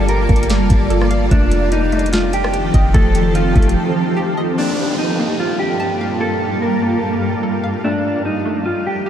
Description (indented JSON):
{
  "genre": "hip hop, atmospheric cloud-rap",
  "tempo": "147 BPM",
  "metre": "4/4",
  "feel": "half-time",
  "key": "G minor",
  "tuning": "A4 = 440 Hz",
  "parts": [
    { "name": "mellow electric guitar", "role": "melody", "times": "0.0-9.1 s", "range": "D4 to Bb4", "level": "-21 LUFS", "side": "equal", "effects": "lush chorus, tape echo" },
    { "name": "granular cloud pad", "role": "sustained chords", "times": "0.0-9.1 s", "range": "F2 to A5", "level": "-19 LUFS", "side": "equal", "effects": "built-in reverb, ensemble chorus" },
    { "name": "hollow square pluck", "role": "arpeggios", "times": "0.0-9.1 s", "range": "A3 to A5", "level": "-27 LUFS", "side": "equal", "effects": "chorus, phaser, tape echo" },
    { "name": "clean 808-style bass", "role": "bass", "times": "0.0-3.8 s", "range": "F1 to G1", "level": "-16 LUFS", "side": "equal", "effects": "none" },
    { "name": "booming analog drum machine", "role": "drums", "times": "0.1-3.8 s", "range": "hi-hat, kick drum, rim click, snare drum", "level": "-18 LUFS", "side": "equal", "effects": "vintage 12-bit sampler grit" },
    { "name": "downlifter", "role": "sound effects", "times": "4.6-7.8 s", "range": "none", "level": "-28 LUFS", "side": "equal", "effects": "none" }
  ],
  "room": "moderate huge ambient reverb, RT60 7.7 s",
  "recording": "dreamy mix soaked in reverb",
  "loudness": "-14 LUFS",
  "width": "side -10 dB against mid",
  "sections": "0.0-4.6 A section; 4.6-9.1 B section",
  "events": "break 3.8-4.6",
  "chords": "0.0 Gm9; 1.3 F9; 4.6 Gm9; 7.8 F9"
}